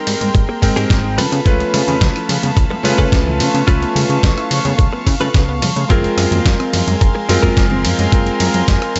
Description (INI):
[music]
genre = nu-disco, nu disco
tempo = 108 BPM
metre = 4/4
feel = straight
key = unclear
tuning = A4 = 440 Hz
[part]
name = clear electric grand piano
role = accompaniment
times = 0.0-9.0 s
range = Ab3 to G5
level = -22 LUFS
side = equal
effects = analog delay
[part]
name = warm studio string section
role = sustained chords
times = 0.0-9.0 s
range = A4 to Db6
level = -26 LUFS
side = equal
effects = sidechain pumping
[part]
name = unison pluck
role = arpeggios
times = 0.1-8.1 s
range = F3 to E4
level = -28 LUFS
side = equal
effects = none
[part]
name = fat analog bass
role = bass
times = 0.1-9.0 s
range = Gb1 to Db3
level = -21 LUFS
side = equal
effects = tube saturation
[part]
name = dusty soul sampler-style drum kit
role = drums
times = 0.1-9.0 s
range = hi-hat, ride cymbal, rim click, snare drum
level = -25 LUFS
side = equal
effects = none
[part]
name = congas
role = percussion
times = 0.2-8.8 s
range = none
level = -29 LUFS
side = equal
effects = none
[part]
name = direct-recorded clean electric guitar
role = riff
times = 0.3-7.9 s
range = C4 to Cb5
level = -25 LUFS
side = equal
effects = subtle chorus, analog delay
[part]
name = electronic kick drum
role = drums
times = 0.3-8.8 s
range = none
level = -16 LUFS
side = equal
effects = none
[sound]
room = little or no reverb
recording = nothing above 7.9 kHz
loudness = -15 LUFS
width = mono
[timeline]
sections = 0.0-9.0 A section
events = none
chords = 0.0 Abmaj9; 1.2 Db7alt; 5.9 Gbmaj9#11